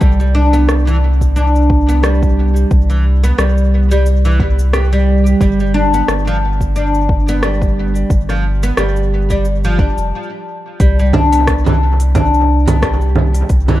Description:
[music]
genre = organic downtempo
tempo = 89 BPM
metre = 4/4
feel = swing 56% on 16ths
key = unclear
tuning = A4 = 440 Hz
[part]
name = oud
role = arpeggios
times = 0.0-13.8 s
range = E3 to G4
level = -16 LUFS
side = equal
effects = tape echo
[part]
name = warm sub bass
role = bass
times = 0.0-13.8 s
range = F1 to C2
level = -13 LUFS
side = equal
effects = none
[part]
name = electronic kick drum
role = drums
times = 0.0-13.6 s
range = none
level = -15 LUFS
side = equal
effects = none
[part]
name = organic electronic drum kit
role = drums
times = 0.0-13.8 s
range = congas, hi-hat, rim click, shaker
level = -19 LUFS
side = right 2 dB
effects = overdrive, tape echo
[sound]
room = digital ambience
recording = echo-heavy mix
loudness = -11 LUFS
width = side -15 dB against mid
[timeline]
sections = 0.0-10.8 A section; 10.8-13.8 B section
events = stop 10.1-10.8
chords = 0.0 Cmaj7(no3); 5.4 G5; 10.8 Cmaj7(no3)

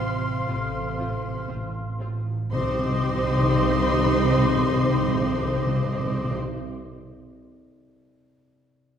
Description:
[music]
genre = cinematic, emotional film score for orchestra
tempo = 59 BPM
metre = 4/4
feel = rubato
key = C dorian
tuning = A4 = 438 Hz
[part]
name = warm studio violin section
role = melody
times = 0.0-6.3 s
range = C6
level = -33 LUFS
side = left 4 dB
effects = none
[part]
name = clear oboe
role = second line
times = 0.0-6.3 s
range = Eb5 to F5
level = -34 LUFS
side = right 1 dB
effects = none
[part]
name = mellow clarinet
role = second line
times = 0.0-6.3 s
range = G4 to F5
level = -35 LUFS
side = right 1 dB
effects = none
[part]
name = mellow hollow silver concert flute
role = second line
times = 0.0-6.3 s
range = C6 to D6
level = -35 LUFS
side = equal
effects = none
[part]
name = warm studio violin section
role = second line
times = 0.0-6.4 s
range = C5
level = -31 LUFS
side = left 1 dB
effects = none
[part]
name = rich studio viola section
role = accompaniment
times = 0.0-6.4 s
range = C4 to F4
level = -32 LUFS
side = right 2 dB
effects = none
[part]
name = dark French horn section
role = sustained chords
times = 0.0-6.4 s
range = C4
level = -32 LUFS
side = left 2 dB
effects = none
[part]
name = concert harp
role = arpeggios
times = 0.0-6.6 s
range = A2 to D6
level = -33 LUFS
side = left 4 dB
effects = none
[part]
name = rich studio cello section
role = bass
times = 0.0-6.4 s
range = C3 to C4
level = -33 LUFS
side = right 1 dB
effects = none
[part]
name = rich studio double bass section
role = bass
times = 0.0-6.3 s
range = A1 to C2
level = -29 LUFS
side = right 2 dB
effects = none
[part]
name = timpani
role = percussion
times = 2.5-6.4 s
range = C3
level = -26 LUFS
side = left 1 dB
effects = none
[sound]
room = wet scoring stage reverb, RT60 1.8 s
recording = heard from further back in the room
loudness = -21 LUFS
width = side -8 dB against mid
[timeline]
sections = 0.0-2.5 A section; 2.5-6.6 B section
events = slowing down 0.0-2.5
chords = 0.0 F/A; 2.5 Cmadd9

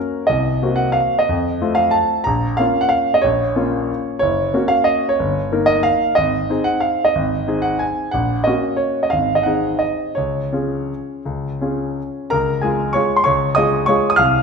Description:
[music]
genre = classical, piano waltz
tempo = 159-203 BPM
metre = 3/4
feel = rubato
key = Bb minor, Db major from 4.2 s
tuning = A4 = 439 Hz
[part]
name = clear grand piano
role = solo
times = 0.0-14.4 s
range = Gb1 to F6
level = -16 LUFS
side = equal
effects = none
[sound]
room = moderate recital hall reverb, RT60 1.3 s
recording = none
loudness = -16 LUFS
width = side -5 dB against mid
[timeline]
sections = 0.0-12.3 A section; 12.3-14.4 B section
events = none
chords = 0.3 Cm7b5; 1.3 F7; 2.3 Bbm; 4.2 Gb; 5.2 Eb7/G; 6.2 Ab; 8.1 Gb/Bb; 9.1 Ab7; 10.2 Db

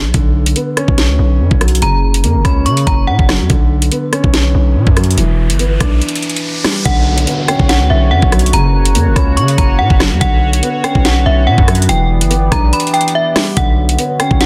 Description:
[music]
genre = hip hop, drill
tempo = 143 BPM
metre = 4/4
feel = half-time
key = B harmonic minor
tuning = A4 = 440 Hz
[part]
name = distorted 808-style bass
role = bass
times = 0.0-14.5 s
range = E1 to C#3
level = -16 LUFS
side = equal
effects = distortion
[part]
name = dark grand piano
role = accompaniment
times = 0.1-14.5 s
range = C#3 to D4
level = -21 LUFS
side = equal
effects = low-pass filter
[part]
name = drill drum kit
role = drums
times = 0.1-14.5 s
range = hi-hat, kick drum, rim click, snare drum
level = -16 LUFS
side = equal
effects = soft clipping on snare
[part]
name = metallic FM bell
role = melody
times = 1.8-3.3, 6.9-14.5 s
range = E5 to C#6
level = -20 LUFS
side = equal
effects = chorus, low-pass filter
[part]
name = riser and downlifter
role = sound effects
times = 4.7-10.2 s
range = none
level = -27 LUFS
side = equal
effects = none
[part]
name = sweeping resonant pad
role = sustained chords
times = 6.9-14.5 s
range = C#3 to D5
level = -26 LUFS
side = equal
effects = chorus
[sound]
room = little or no reverb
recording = dense, heavily limited modern master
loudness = -12 LUFS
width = mono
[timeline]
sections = 0.0-6.9 A section; 6.9-14.5 B section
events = break 0.0-1.8, 6.0-6.9; riser 4.7-6.9; kick muted 12.7-13.6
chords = 0.1 Bmadd9; 1.8 F#; 3.5 Bmadd9; 5.2 Em7; 6.9 Bmadd9; 8.5 F#; 10.2 Bmadd9; 11.9 Em7; 13.6 Bmadd9

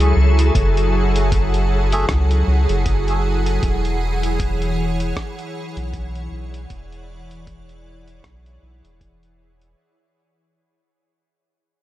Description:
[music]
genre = ambient dub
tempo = 78 BPM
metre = 4/4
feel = swing 57% on 16ths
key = unclear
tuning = A4 = 440 Hz
[part]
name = soft additive organ-like pad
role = sustained chords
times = 0.0-9.8 s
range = E3 to F#5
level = -23 LUFS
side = equal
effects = ensemble chorus, built-in reverb
[part]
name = round analog bass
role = bass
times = 0.0-9.7 s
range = E1 to C#2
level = -18 LUFS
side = equal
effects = none
[part]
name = lo-fi sampler-style drum kit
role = drums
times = 0.0-9.7 s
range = hi-hat, rim click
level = -30 LUFS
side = equal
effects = dub echo
[part]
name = electronic kick drum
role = drums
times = 0.6-9.2 s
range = none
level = -22 LUFS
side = equal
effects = none
[part]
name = melodica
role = stabs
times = 1.9-2.1 s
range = A3 to E5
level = -30 LUFS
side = right 1 dB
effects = dub echo
[sound]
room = little or no reverb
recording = none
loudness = -16 LUFS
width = side -14 dB against mid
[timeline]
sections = 0.0-9.8 A section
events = fade-out 0.0-9.8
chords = 0.0 F#m9; 3.6 E13

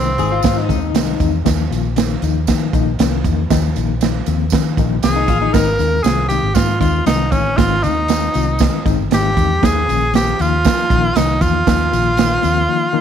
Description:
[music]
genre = uptempo 1960s-style soul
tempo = 118 BPM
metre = 4/4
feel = straight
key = Ab major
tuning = A4 = 440 Hz
[part]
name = edgy tenor saxophone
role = melody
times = 0.0-0.7, 5.0-13.0 s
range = C4 to Bb4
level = -18 LUFS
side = equal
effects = none
[part]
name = mellow reed electric piano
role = accompaniment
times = 0.0-13.0 s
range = Eb3 to F4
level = -20 LUFS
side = left 12 dB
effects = fast tremolo
[part]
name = vintage muted fingered electric bass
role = bass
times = 0.0-12.7 s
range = G1 to Eb3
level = -20 LUFS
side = equal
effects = none
[part]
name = electric guitar through a small old amp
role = riff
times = 0.2-1.3, 5.2-5.7 s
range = Eb4 to Ab4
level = -23 LUFS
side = left 14 dB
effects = none
[part]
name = swinging big-band drum kit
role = drums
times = 0.2-12.6 s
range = hi-hat, kick drum, snare drum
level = -18 LUFS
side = right 5 dB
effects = none
[part]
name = tambourine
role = percussion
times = 0.2-12.6 s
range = none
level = -33 LUFS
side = right 16 dB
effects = none
[sound]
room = light reverb, small room ambience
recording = 1960s-style stereo with parts hard left and right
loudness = -13 LUFS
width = side -8 dB against mid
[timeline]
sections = 0.0-13.0 A section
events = none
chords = 0.0 Ab; 1.5 Ebsus2; 5.5 Ab; 9.6 Ebsus2

